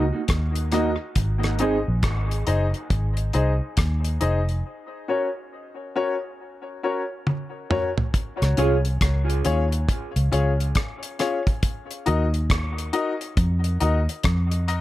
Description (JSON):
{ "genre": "dub reggae", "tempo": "69 BPM", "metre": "4/4", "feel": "swing 63% on 16ths", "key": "unclear", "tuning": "A4 = 439 Hz", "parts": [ { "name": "mellow electric guitar", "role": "accompaniment", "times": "0.0-1.8, 8.6-8.7 s", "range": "Bb3 to Ab4", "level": "-29 LUFS", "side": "right 5 dB", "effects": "dub echo" }, { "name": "warm upright piano", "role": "stabs", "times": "0.0-14.8 s", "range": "Db4 to Eb5", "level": "-27 LUFS", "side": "left 4 dB", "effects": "high-pass filter, dub echo" }, { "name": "vintage muted fingered electric bass", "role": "bass", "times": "0.0-14.8 s", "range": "F1 to F2", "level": "-22 LUFS", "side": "equal", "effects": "none" }, { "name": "damped 70s drum kit", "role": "drums", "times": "0.3-14.8 s", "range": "hi-hat, kick drum, rim click, toms", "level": "-24 LUFS", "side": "equal", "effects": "none" } ], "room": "light reverb, small room reverb", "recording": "none", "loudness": "-21 LUFS", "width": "side -15 dB against mid", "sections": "0.0-8.1 A section; 8.1-14.8 B section", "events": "break 4.6-8.1; drum fill 7.3-8.1; filter sweep on upright piano 11.6-14.8", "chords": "0.0 Ebm; 1.2 Ab; 4.6 Gb; 8.1 Db; 11.6 Ebm" }